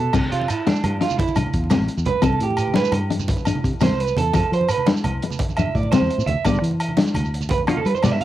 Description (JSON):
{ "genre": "highlife guitar band", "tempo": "114 BPM (dotted quarters)", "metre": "12/8", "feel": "straight", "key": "C major", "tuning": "A4 = 441 Hz", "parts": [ { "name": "electric guitar through a small old amp", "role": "arpeggios", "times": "0.0-8.2 s", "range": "D4 to F5", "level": "-24 LUFS", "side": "right 6 dB", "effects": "cassette tape, analog delay" }, { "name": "fingered electric bass", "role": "bass", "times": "0.0-8.2 s", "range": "A1 to G3", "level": "-24 LUFS", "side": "equal", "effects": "none" }, { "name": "fingerpicked steel-string acoustic guitar", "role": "accompaniment", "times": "0.1-8.2 s", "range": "B3 to D4", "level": "-23 LUFS", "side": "left 5 dB", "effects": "cassette tape" }, { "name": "vintage drum kit", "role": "drums", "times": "0.1-8.2 s", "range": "crash cymbal, hi-hat, kick drum, snare drum", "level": "-24 LUFS", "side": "equal", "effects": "cassette tape" }, { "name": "agogo bells", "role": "percussion", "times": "0.1-8.2 s", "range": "none", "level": "-31 LUFS", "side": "equal", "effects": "none" }, { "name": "congas", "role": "percussion", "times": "0.1-8.2 s", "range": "none", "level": "-29 LUFS", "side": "right 4 dB", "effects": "none" }, { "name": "shekere", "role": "percussion", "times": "0.1-8.1 s", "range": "none", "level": "-30 LUFS", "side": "right 3 dB", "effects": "none" } ], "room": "light reverb", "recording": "home recording on cassette", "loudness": "-18 LUFS", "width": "side -13 dB against mid", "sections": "0.1-8.2 A section", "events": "clean electric guitar solo 0.1-8.2; drum fill 8.0", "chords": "0.1 Cadd9; 4.3 Fmaj7 (rootless); 6.5 G" }